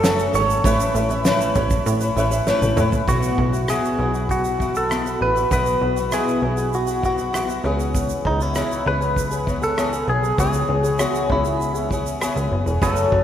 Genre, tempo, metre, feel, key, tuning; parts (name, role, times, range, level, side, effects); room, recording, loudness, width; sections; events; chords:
acoustic pop; 99 BPM; 4/4; straight; C# minor; A4 = 444 Hz
direct-recorded clean electric guitar; melody; 0.0-13.2 s; D#4 to C#5; -23 LUFS; equal; phaser
fingerpicked twelve-string acoustic guitar; accompaniment; 0.0-13.2 s; F#2 to B4; -23 LUFS; left 2 dB
plucky analog bass; bass; 0.0-13.2 s; E1 to A2; -24 LUFS; equal
cloth-damped thuddy drum kit; drums; 0.0-13.2 s; kick drum, rim click, shaker, snare drum, toms; -25 LUFS; right 1 dB
egg shaker; percussion; 0.0-13.1 s; -36 LUFS; right 9 dB
flamenco guitar; arpeggios; 0.6-2.9, 12.8-13.0 s; B4 to E5; -29 LUFS; right 5 dB
wet cathedral reverb, RT60 4.7 s; recorded in a church or concert hall; -18 LUFS; side -10 dB against mid
0.0-3.1 A section; 3.1-13.2 B section
drum fill 2.5-3.1
0.0 F#m; 0.6 Aadd9; 3.1 Bsus4; 7.6 C#m7